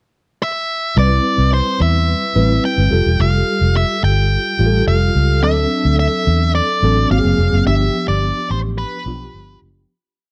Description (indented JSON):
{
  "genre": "polished 1980s jazz-funk pop",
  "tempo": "108 BPM",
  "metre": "4/4",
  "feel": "straight",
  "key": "C major",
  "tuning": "A4 = 440 Hz",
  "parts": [
    { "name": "octave-fuzz lead guitar", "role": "melody", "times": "0.4-9.6 s", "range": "B4 to G5", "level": "-22 LUFS", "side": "equal", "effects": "distortion, slapback echo" },
    { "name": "mellow tine electric piano", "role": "accompaniment", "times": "1.0-9.9 s", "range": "F3 to B4", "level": "-22 LUFS", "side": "equal", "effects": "analog chorus" },
    { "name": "vintage muted fingered electric bass", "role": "bass", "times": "1.0-9.8 s", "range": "E1 to E2", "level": "-18 LUFS", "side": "equal", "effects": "none" }
  ],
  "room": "digital ambience",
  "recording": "dry, close 1970s-style studio recording",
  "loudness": "-16 LUFS",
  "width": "mono",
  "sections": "0.0-1.0 pickup bar; 1.0-9.9 verse",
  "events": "fade-out 7.7-9.9",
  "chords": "0.0 N.C.; 1.0 Cmaj7; 2.9 Fadd9; 5.4 D7; 7.1 Ab9; 7.7 G7"
}